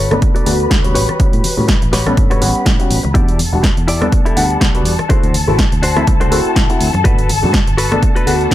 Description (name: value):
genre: filtered disco house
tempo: 123 BPM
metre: 4/4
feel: swing 56% on 16ths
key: unclear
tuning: A4 = 440 Hz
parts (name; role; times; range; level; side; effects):
- dark studio string section; sustained chords; 0.0-8.5 s; A4 to B5; -23 LUFS; left 4 dB; sidechain pumping, low-pass filter
- direct-recorded clean electric guitar; riff; 0.0-8.5 s; D4 to D5; -22 LUFS; left 2 dB; sidechain pumping, low-pass filter
- fingered electric bass; bass; 0.0-8.5 s; E1 to A2; -18 LUFS; equal; sidechain pumping, low-pass filter
- dark grand piano; accompaniment; 0.1-8.5 s; G3 to B5; -18 LUFS; left 1 dB; phaser, sidechain pumping, low-pass filter
- punchy analog drum machine; drums; 0.1-8.5 s; hi-hat, rim click, snare drum; -20 LUFS; right 1 dB; overdrive
- maracas and congas; percussion; 0.1-8.5 s; none; -22 LUFS; left 3 dB; sidechain pumping on perc, low-pass filter on perc
- electronic kick drum; drums; 0.2-8.5 s; none; -14 LUFS; equal; overdrive
room: small room ambience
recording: none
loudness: -11 LUFS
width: side -14 dB against mid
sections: 0.0-8.5 A section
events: filter sweep 0.0-8.5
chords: 0.0 Gmaj9; 1.0 A13; 3.1 Em7; 5.1 D7; 7.0 Gmaj9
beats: 0.22 0.71 | 1.20 1.69 2.17 2.66 | 3.15 3.64 4.12 4.61 | 5.10 5.59 6.08 6.56 | 7.05 7.54 8.03 8.51